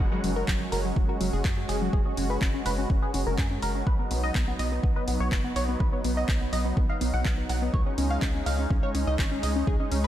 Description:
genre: progressive house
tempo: 124 BPM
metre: 4/4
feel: straight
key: unclear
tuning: A4 = 439 Hz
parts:
  - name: lush unison pad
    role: sustained chords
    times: 0.0-10.1 s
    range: F#3 to Gb4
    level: -32 LUFS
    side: right 1 dB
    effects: chorus, sidechain pumping
  - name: tight sequenced synth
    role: arpeggios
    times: 0.0-10.1 s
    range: Gb3 to F#5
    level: -31 LUFS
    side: equal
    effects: chorus, sidechain pumping, analog delay
  - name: tight sequencer bass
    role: bass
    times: 0.0-10.1 s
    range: Gb1 to Gb2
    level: -30 LUFS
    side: equal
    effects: sidechain pumping
  - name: electronic kick drum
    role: drums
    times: 0.0-9.8 s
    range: none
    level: -26 LUFS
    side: equal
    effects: studio reverb
  - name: deep house drum kit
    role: drums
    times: 0.2-10.0 s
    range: handclaps, hi-hat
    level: -35 LUFS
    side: equal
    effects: studio reverb, sidechain pumping on hats
room: light reverb, digital ambience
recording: none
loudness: -24 LUFS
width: side -12 dB against mid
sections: 0.0-10.1 A section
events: none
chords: 0.0 Gbsus2; 3.9 B; 7.7 Dbsus2

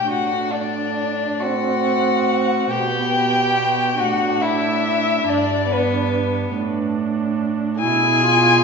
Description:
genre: classical, slow romantic movement for string quartet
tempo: 47 BPM (dotted quarters)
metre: 6/8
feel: rubato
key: G major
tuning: A4 = 440 Hz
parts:
  - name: dark violin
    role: melody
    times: 0.0-8.6 s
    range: B4 to G#5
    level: -20 LUFS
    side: left 5 dB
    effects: none
  - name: rich violin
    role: second line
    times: 0.0-8.6 s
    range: B3 to G#4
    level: -24 LUFS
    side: left 1 dB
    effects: none
  - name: dark viola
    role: accompaniment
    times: 0.0-8.6 s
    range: B3 to F4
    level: -24 LUFS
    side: right 4 dB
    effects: none
  - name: warm cello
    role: bass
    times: 0.0-8.6 s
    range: G2 to B2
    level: -24 LUFS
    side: right 6 dB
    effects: none
room: wet recital hall reverb, RT60 1.8 s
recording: recorded in a church or concert hall, nothing above 7.7 kHz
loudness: -17 LUFS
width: side -5 dB against mid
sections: 0.0-8.6 A section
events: none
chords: 0.1 D7/A; 2.7 G/B; 5.3 G; 7.8 E/B

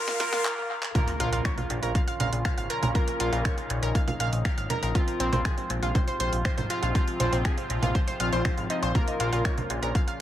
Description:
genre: melodic techno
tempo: 120 BPM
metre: 4/4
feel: straight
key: Bb minor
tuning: A4 = 441 Hz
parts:
  - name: sweeping resonant pad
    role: sustained chords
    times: 0.0-10.2 s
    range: Ab2 to F4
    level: -35 LUFS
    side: equal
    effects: chorus, sidechain pumping
  - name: analog synth brass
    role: stabs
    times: 0.0-9.6 s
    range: F3 to Bb4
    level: -33 LUFS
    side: equal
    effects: chorus, sidechain pumping, dub echo
  - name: riser and impact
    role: sound effects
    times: 0.0-3.0 s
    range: none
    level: -36 LUFS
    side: left 1 dB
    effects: none
  - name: analog pluck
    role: arpeggios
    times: 0.1-10.2 s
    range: C4 to F6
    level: -31 LUFS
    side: equal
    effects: chorus, sidechain pumping, analog delay
  - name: house drum kit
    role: drums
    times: 0.1-10.2 s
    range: congas, finger snaps, handclaps, hi-hat, snare drum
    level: -32 LUFS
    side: right 2 dB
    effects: sidechain pumping on hats, sidechain pumping on perc, dub echo
  - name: fat analog bass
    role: bass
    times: 0.2-9.9 s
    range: Ab1 to Bb2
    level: -29 LUFS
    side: equal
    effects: sidechain pumping
  - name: electronic kick drum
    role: drums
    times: 0.9-10.1 s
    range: none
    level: -26 LUFS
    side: equal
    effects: none
room: moderate spring reverb, RT60 2.1 s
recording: echo-heavy mix, high-pass filter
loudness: -24 LUFS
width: side -12 dB against mid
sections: 1.0-10.2 A section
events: drum fill 0.0-0.5, 0.5-1.0; riser 0.0-0.5; stop 0.5-1.0; drop 1.0-10.2; impact 1.0-3.0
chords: 0.0 Fm; 1.0 Bbm; 5.0 Fm; 9.0 Bbm

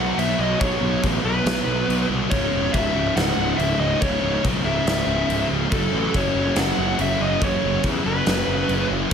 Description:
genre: heavy metal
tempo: 141 BPM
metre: 4/4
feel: straight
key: C# minor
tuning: A4 = 440 Hz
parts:
  - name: dark smooth lead guitar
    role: melody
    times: 0.0-8.9 s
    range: A4 to F#5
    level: -25 LUFS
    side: left 1 dB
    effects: overdrive, digital delay
  - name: crunchy overdriven guitar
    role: riff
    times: 0.0-9.1 s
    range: C#2 to B3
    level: -27 LUFS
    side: left 1 dB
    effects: none
  - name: high-gain distorted guitar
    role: riff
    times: 0.0-9.1 s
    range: C#2 to F#3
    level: -29 LUFS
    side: left 12 dB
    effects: distortion
  - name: high-gain distorted guitar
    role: riff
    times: 0.0-9.1 s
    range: C#2 to B3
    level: -27 LUFS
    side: right 10 dB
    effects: distortion
  - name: fuzz picked electric bass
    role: bass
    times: 0.0-9.1 s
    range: C#1 to E2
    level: -26 LUFS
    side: equal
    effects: overdrive
  - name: big rock drum kit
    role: drums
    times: 0.2-9.1 s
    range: crash cymbal, kick drum, snare drum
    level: -26 LUFS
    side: equal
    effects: none
room: light reverb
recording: none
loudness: -19 LUFS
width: side -7 dB against mid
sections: 0.0-9.1 A section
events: half time 0.0-9.1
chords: 0.0 B5; 2.3 C#m; 5.7 F#5

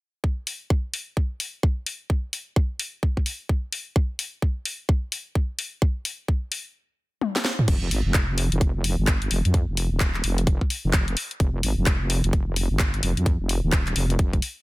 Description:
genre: bass house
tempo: 129 BPM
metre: 4/4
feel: swing 62% on 16ths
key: F minor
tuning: A4 = 440 Hz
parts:
  - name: electronic kick drum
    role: drums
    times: 0.2-14.4 s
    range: none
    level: -22 LUFS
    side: equal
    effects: none
  - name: garage drum kit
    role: drums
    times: 0.5-14.5 s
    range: crash cymbal, handclaps, hi-hat, snare drum, toms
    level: -26 LUFS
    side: left 1 dB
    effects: none
  - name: wobble bass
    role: bass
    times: 7.7-14.4 s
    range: Eb1 to F2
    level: -24 LUFS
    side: equal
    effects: chorus, sidechain pumping
room: digital ambience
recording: dense, heavily limited modern master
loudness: -22 LUFS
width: side -20 dB against mid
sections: 0.2-7.7 A section; 7.7-14.6 B section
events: drum fill 7.2-7.7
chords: none

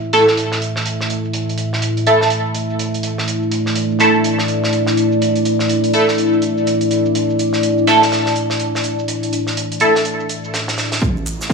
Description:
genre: bass house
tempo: 124 BPM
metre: 4/4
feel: swing 61% on 16ths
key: unclear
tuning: A4 = 440 Hz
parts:
  - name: dark analog pad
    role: sustained chords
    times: 0.0-11.5 s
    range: A3 to E5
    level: -17 LUFS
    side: left 1 dB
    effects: chorus, phaser, sidechain pumping
  - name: electronic cabasa and hi-hat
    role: drums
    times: 0.0-11.5 s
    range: none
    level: -37 LUFS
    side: right 4 dB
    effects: none
  - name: band-passed chord stab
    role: stabs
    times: 0.1-9.9 s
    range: A3 to A4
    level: -16 LUFS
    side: right 1 dB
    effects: phaser, ensemble chorus, sidechain pumping, tape echo
  - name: warm soul drum kit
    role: drums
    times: 0.1-11.5 s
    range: hi-hat, snare drum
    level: -23 LUFS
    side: right 2 dB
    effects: high-pass filter on hats, low-pass filter on hats, high-pass filter on snare, low-pass filter on snare, high-pass filter on room, low-pass filter on room
  - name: electronic kick drum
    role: drums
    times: 11.0-11.5 s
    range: none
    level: -18 LUFS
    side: right 1 dB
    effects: overdrive
  - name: riser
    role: sound effects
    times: 11.2-11.5 s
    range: none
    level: -38 LUFS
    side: equal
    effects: none
room: moderate plate reverb, RT60 2.0 s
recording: small room reverb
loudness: -14 LUFS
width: side -4 dB against mid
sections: 0.0-11.0 A section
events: riser 11.2-11.5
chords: 0.0 A5

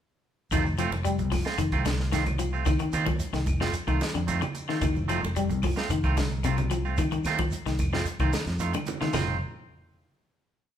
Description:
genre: afrobeat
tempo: 111 BPM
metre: 4/4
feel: straight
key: F mixolydian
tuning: A4 = 440 Hz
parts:
  - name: electric guitar at the edge of break-up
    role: arpeggios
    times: 0.5-9.3 s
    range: C3 to G3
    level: -30 LUFS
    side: left 5 dB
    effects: none
  - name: clean electric guitar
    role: stabs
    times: 0.5-9.4 s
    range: Eb3 to F4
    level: -33 LUFS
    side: right 7 dB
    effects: none
  - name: fingered electric bass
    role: bass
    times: 0.5-9.4 s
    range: F1 to F2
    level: -30 LUFS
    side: equal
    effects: none
  - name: compact cocktail drum kit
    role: drums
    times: 0.5-9.3 s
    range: hi-hat, kick drum, ride cymbal, snare drum, toms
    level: -30 LUFS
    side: equal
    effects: none
  - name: claves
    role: percussion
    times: 0.5-9.3 s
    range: none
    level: -44 LUFS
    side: left 2 dB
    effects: none
  - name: congas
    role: percussion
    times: 0.5-9.3 s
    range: none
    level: -36 LUFS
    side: right 4 dB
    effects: none
  - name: shekere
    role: percussion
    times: 0.5-9.3 s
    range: none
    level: -39 LUFS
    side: right 2 dB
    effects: none
room: moderate large studio reverb, RT60 1.1 s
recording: band playing live in one room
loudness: -25 LUFS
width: side -10 dB against mid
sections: 0.5-9.1 groove; 9.1-10.8 final chord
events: drum fill 8.6-9.1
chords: 0.5 F7; 9.1 F7(no3)

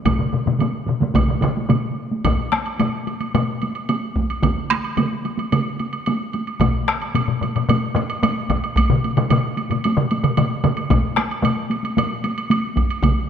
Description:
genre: japanese traditional, taiko drum ensemble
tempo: 111 BPM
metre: 4/4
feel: straight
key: none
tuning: none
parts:
  - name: taiko ensemble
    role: percussion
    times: 0.1-13.2 s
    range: none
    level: -23 LUFS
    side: right 1 dB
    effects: none
  - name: taiko ensemble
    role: percussion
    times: 0.1-12.1 s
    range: none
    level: -22 LUFS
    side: left 5 dB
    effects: none
  - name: taiko ensemble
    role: percussion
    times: 0.1-13.2 s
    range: none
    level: -22 LUFS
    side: right 4 dB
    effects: none
  - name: taiko ensemble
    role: percussion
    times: 0.1-13.2 s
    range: none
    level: -22 LUFS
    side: equal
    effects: none
  - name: woodblock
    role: percussion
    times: 0.1-13.2 s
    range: none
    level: -27 LUFS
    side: right 4 dB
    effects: none
room: moderate concert hall reverb, RT60 2.1 s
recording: close, detailed microphones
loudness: -18 LUFS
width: side -8 dB against mid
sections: 0.0-2.2 A section; 2.2-13.3 B section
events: speeding up 0.0-13.3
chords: none

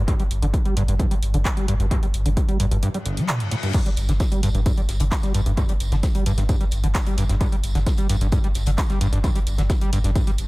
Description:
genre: driving peak-time techno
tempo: 131 BPM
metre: 4/4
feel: straight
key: unclear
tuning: A4 = 438 Hz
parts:
  - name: overdriven acid bass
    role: riff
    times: 0.0-10.3 s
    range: G1 to G3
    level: -25 LUFS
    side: equal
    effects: distortion, analog chorus, cassette tape, sidechain pumping, dub echo
  - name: saturated sub bass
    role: bass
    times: 0.0-10.5 s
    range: G1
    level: -22 LUFS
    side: equal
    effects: tube saturation, sidechain pumping, low-pass filter
  - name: electronic kick drum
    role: drums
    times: 0.1-10.2 s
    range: none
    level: -21 LUFS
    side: equal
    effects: none
  - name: techno drum kit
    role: drums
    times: 0.1-10.5 s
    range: crash cymbal, handclaps, hi-hat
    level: -31 LUFS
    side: right 1 dB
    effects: sidechain pumping on hats, sidechain pumping on cymbals, analog delay
  - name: reverse cymbal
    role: sound effects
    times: 3.0-3.7 s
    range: none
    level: -34 LUFS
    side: left 6 dB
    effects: none
  - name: damped 70s drum kit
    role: drums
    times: 3.7-10.5 s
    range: hi-hat, snare drum, tambourine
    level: -37 LUFS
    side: equal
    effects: sidechain pumping on hats, high-pass filter on hats, high-pass filter on snare, sidechain pumping on perc, high-pass filter on perc, high-pass filter on room, analog delay
room: studio reverb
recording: echo-heavy mix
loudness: -19 LUFS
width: side -21 dB against mid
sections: 0.0-10.5 A section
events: filter sweep on acid bass 0.0-10.5; break 2.8-3.7; reverse cymbal 3.0-3.7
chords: 0.0 G5

